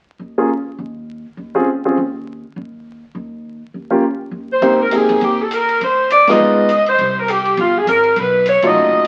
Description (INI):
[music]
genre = jazz, big band swing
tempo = 203 BPM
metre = 4/4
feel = swing 60% on 8ths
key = Ab major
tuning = A4 = 439 Hz
[part]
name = upright bass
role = bass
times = 0.2-9.1 s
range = F#1 to Eb2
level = -32 LUFS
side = equal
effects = none
[part]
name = warm concert grand piano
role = accompaniment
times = 0.4-9.0 s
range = F#3 to Ab4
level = -18 LUFS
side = equal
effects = none
[part]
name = warm saxophone section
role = melody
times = 4.5-9.1 s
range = F4 to Eb5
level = -15 LUFS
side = equal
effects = none
[part]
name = swinging big-band drum kit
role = drums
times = 4.6-9.1 s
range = hi-hat, kick drum, ride cymbal, snare drum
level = -30 LUFS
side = equal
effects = none
[sound]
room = wet studio reverb, RT60 0.8 s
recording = very old 78 rpm record, vinyl crackle, nothing above 10.5 kHz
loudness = -15 LUFS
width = mono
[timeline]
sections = 0.0-4.6 A section; 4.6-9.1 B section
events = band accent 6.2, 8.6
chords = 0.0 N.C.; 4.6 Abmaj9; 5.8 Dm7b5; 6.4 Db9; 7.0 C5; 8.2 B7#11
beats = 0.20 0.49 0.79 | 1.08 1.38 1.67 1.97 | 2.27 2.56 2.86 3.15 | 3.45 3.74 4.04 4.33 | 4.63 4.92 5.22 5.51 | 5.81 6.10 6.40 6.69 | 6.99 7.28 7.58 7.87 | 8.17 8.46 8.76 9.05